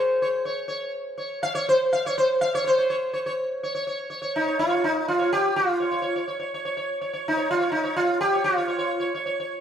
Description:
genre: indian classical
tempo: 124 BPM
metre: 3/4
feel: straight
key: Db raga yaman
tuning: A4 = 438 Hz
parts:
  - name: sitar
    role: solo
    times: 0.0-9.6 s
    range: Eb4 to F5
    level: -22 LUFS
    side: equal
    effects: none
room: wet stone room reverb, RT60 1.1 s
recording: band playing live in one room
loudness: -22 LUFS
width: side -9 dB against mid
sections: 0.0-2.6 A section; 2.6-9.6 B section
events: none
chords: none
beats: 0.21 0.70 | 1.18 1.67 2.16 | 2.64 3.13 3.61 | 4.10 4.58 5.06 | 5.54 6.03 6.51 | 6.99 7.47 7.94 | 8.42 8.90 9.38

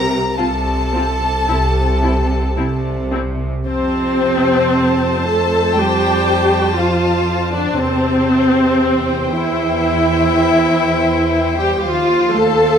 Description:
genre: classical, slow romantic movement for string orchestra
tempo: 53-62 BPM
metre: 4/4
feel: rubato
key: F major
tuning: A4 = 440 Hz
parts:
  - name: warm chamber violin section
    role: melody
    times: 0.0-12.8 s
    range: C5 to Bb5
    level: -22 LUFS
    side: left 6 dB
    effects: none
  - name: rich chamber violin section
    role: second line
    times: 0.0-12.8 s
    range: A4 to A5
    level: -23 LUFS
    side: left 2 dB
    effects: none
  - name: rich chamber double bass section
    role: bass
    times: 0.0-12.8 s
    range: C2 to F2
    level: -21 LUFS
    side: right 1 dB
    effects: none
  - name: rich studio cello section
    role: bass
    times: 0.0-12.8 s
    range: C3 to A3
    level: -23 LUFS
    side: right 2 dB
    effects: none
  - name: rich chamber viola section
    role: accompaniment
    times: 0.4-12.8 s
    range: C4 to A4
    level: -16 LUFS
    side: right 1 dB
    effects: none
room: moderate scoring stage reverb, RT60 2.1 s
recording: close, detailed microphones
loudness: -13 LUFS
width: side -8 dB against mid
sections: 0.0-3.7 A section; 3.7-12.8 B section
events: none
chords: 0.0 F/C (rootless); 1.5 C; 3.7 F; 7.8 C/E; 11.8 F7/Eb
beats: 0.36 1.48 2.56 | 3.66 4.73 5.76 6.76 | 7.79 8.80 9.82 10.84 | 11.83

